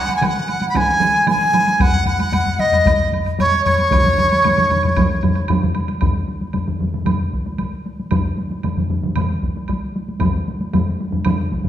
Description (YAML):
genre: japanese traditional, taiko drum ensemble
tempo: 114 BPM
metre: 4/4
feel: straight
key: C# suspended pentatonic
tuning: A4 = 440 Hz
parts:
  - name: bright reedy large dizi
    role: melody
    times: 0.0-5.5 s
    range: C#5 to B5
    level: -16 LUFS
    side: equal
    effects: none
  - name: taiko ensemble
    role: percussion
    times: 0.1-11.7 s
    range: none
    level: -24 LUFS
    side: equal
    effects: none
  - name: woodblock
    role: percussion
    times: 0.1-11.4 s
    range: none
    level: -29 LUFS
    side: right 6 dB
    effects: none
  - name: taiko ensemble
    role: percussion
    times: 0.2-11.7 s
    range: none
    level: -22 LUFS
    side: right 3 dB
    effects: none
  - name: taiko ensemble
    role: percussion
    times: 0.7-11.6 s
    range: none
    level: -24 LUFS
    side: equal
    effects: none
  - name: solo taiko drums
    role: percussion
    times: 1.8-11.7 s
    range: none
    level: -22 LUFS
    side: left 3 dB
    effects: none
room: wet recital hall reverb, RT60 1.5 s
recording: recorded in a church or concert hall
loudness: -15 LUFS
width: side -11 dB against mid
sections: 0.0-6.0 A section; 6.0-11.7 B section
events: none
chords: none